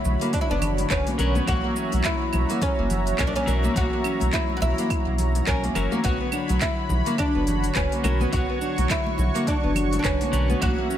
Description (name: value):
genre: organic downtempo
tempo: 105 BPM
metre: 4/4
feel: swing 59% on 16ths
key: B harmonic minor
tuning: A4 = 441 Hz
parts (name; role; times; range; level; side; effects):
- oud; melody; 0.0-11.0 s; C#4 to F#4; -28 LUFS; equal; ping-pong delay
- clean electric guitar; accompaniment; 0.0-11.0 s; D3 to C#5; -31 LUFS; left 4 dB; sidechain pumping, ping-pong delay
- warm analog pad; sustained chords; 0.0-11.0 s; F#4 to C#6; -31 LUFS; right 3 dB; chorus, tremolo, sidechain pumping
- warm sub bass; bass; 0.0-10.7 s; F#1 to B1; -24 LUFS; equal; none
- organic electronic drum kit; drums; 0.0-11.0 s; cabasa, claves, handclaps, hi-hat; -31 LUFS; right 2 dB; overdrive
- congas and bongos; percussion; 0.1-10.6 s; none; -34 LUFS; left 2 dB; none
- nylon-string guitar; arpeggios; 0.2-11.0 s; F#3 to B4; -30 LUFS; left 1 dB; ping-pong delay
- electronic kick drum; drums; 0.3-10.8 s; none; -29 LUFS; equal; overdrive
room: light reverb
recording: none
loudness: -21 LUFS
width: side -10 dB against mid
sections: 0.0-11.0 A section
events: none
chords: 0.0 Bmadd9; 1.5 F#7; 6.0 Bmadd9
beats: 0.33 0.90 | 1.47 2.05 2.62 3.19 | 3.76 4.33 4.90 5.47 | 6.05 6.62 7.19 7.76 | 8.33 8.90 9.47 10.05 | 10.62